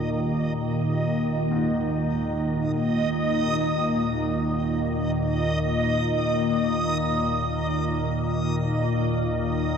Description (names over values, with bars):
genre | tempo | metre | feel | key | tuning
dark ambient drone | free time | none | none | unclear | A4 = 438 Hz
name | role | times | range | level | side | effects
sweeping resonant pad | sustained chords | 0.0-9.8 s | Eb3 to Eb4 | -27 LUFS | equal | chorus
organ-like drone | drone | 0.0-9.8 s | Eb2 to Bb2 | -26 LUFS | left 2 dB | ensemble chorus, built-in reverb
backwards swelling texture | texture | 0.0-9.8 s | Eb5 | -28 LUFS | right 2 dB | built-in reverb
bright concert grand piano | arpeggios | 1.5-9.8 s | Ab2 | -44 LUFS | left 2 dB | none
room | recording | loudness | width
wet cathedral reverb, RT60 5.7 s | worn, warbling old tape, cassette tape, warbly pitch drift | -22 LUFS | side -7 dB against mid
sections
0.0-9.8 A section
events
none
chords
0.0 Eb5